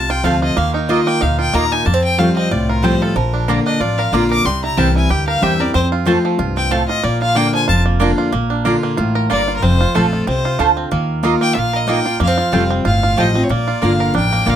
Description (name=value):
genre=bluegrass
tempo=186 BPM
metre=4/4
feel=swing 56% on 8ths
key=Bb major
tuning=A4 = 440 Hz
part: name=clear fiddle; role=melody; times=0.0-14.6 s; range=A4 to D6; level=-20 LUFS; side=left 2 dB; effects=none
part: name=picked steel-string acoustic guitar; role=accompaniment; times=0.0-14.6 s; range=F2 to Bb4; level=-18 LUFS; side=left 2 dB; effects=none
part: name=bluegrass banjo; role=arpeggios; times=0.0-14.6 s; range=F3 to Bb4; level=-21 LUFS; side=right 6 dB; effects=none
part: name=upright bass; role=bass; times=0.0-14.6 s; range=F1 to F2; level=-20 LUFS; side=equal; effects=none
part: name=mandolin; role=stabs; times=0.2-14.6 s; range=A3 to Bb5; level=-19 LUFS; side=right 6 dB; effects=none
room=light reverb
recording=close, detailed microphones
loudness=-13 LUFS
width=side -10 dB against mid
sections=0.0-8.3 A section; 8.3-14.6 B section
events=fiddle solo 0.0-8.3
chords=0.0 F; 0.6 Ebsus2; 1.9 Fadd9; 3.2 Bb; 4.5 C; 5.8 F; 7.0 Bb; 9.6 F; 10.9 Ebsus2; 12.2 Fadd9; 13.5 Bb